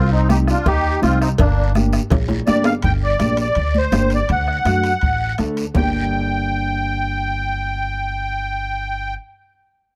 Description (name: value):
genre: latin, cumbia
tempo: 165 BPM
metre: 4/4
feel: straight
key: G harmonic minor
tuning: A4 = 440 Hz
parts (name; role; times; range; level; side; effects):
- musette accordion; melody; 0.0-9.1 s; D4 to G5; -24 LUFS; equal; none
- warm flugelhorn; second line; 0.0-1.7 s; Bb3 to Eb4; -30 LUFS; equal; none
- upright bass; bass; 0.0-9.1 s; G1 to F#2; -23 LUFS; equal; none
- mellow electric guitar; accompaniment; 0.3-9.2 s; A3 to A4; -26 LUFS; equal; none
- bombo; percussion; 0.3-5.8 s; none; -25 LUFS; equal; none
- congas; percussion; 0.3-5.8 s; none; -26 LUFS; equal; none
- guiro; percussion; 0.3-5.8 s; none; -39 LUFS; equal; none
- cowbell and timbales; percussion; 0.7-5.8 s; none; -28 LUFS; equal; none
room: light reverb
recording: none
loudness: -19 LUFS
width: mono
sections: 0.0-2.8 A section; 2.8-5.8 B section; 5.8-8.7 C section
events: drum fill 2.1-2.8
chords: 0.0 Cm; 1.4 Gm; 4.3 D; 5.8 Gm